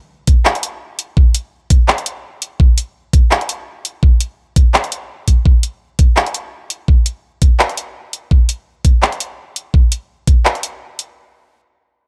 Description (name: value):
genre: half-time drum and bass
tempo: 168 BPM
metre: 4/4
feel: swing 55% on 16ths, half-time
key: none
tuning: none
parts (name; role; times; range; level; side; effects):
- drum and bass drum kit; drums; 0.3-11.1 s; handclaps, hi-hat; -18 LUFS; equal; none
- electronic kick drum; drums; 0.3-10.4 s; none; -12 LUFS; equal; none
room: little or no reverb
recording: dry, gritty hardware recording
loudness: -15 LUFS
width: mono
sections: 0.0-11.2 A section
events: none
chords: none